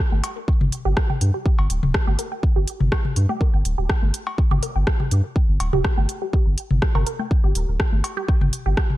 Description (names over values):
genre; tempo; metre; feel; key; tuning
minimal techno; 123 BPM; 4/4; straight; G minor; A4 = 440 Hz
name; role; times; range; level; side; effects
resonant blip pluck; riff; 0.1-8.7 s; G4 to G5; -30 LUFS; right 3 dB; phaser, vintage 12-bit sampler grit, sidechain pumping, digital delay
saturated sub bass; bass; 0.1-8.7 s; D1 to G2; -20 LUFS; equal; sidechain pumping
electronic congas, cowbell and toms; percussion; 0.1-9.0 s; none; -27 LUFS; left 3 dB; tape echo
house drum kit; drums; 0.2-8.9 s; hi-hat, rim click; -28 LUFS; equal; none
electronic kick drum; drums; 0.5-8.9 s; none; -20 LUFS; equal; none
room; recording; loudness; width
little or no reverb; dark, warm production; -18 LUFS; side -16 dB against mid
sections
0.0-9.0 A section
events
filter sweep on synth arpeggio sound 0.0-9.0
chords
0.0 G5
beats
0.48 0.97 | 1.46 1.94 2.43 2.92 | 3.41 3.90 4.38 4.87 | 5.36 5.85 6.33 6.82 | 7.31 7.80 8.29 8.77